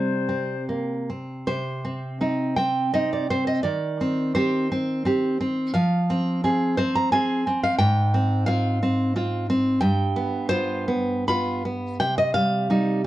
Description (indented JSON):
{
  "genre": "romantic duo for flute and classical guitar",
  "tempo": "72-91 BPM",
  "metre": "3/4",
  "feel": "rubato",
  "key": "C minor",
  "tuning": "A4 = 442 Hz",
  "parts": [
    { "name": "silver concert flute", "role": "melody", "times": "0.0-0.7 s", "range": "C5", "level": "-28 LUFS", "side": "left 8 dB", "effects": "none" },
    { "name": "nylon-string guitar", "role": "accompaniment", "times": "0.0-13.1 s", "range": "G2 to B5", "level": "-21 LUFS", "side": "right 1 dB", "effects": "none" }
  ],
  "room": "moderate studio ambience, RT60 0.5 s",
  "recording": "dark, warm production",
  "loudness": "-21 LUFS",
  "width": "side -15 dB against mid",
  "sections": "0.0-1.5 A section; 1.5-13.1 A section",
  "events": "none",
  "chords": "0.0 C5; 1.5 Cm; 3.6 Cm/Eb; 5.7 Fm; 7.8 Fm/Ab; 9.8 G7; 12.0 Cm"
}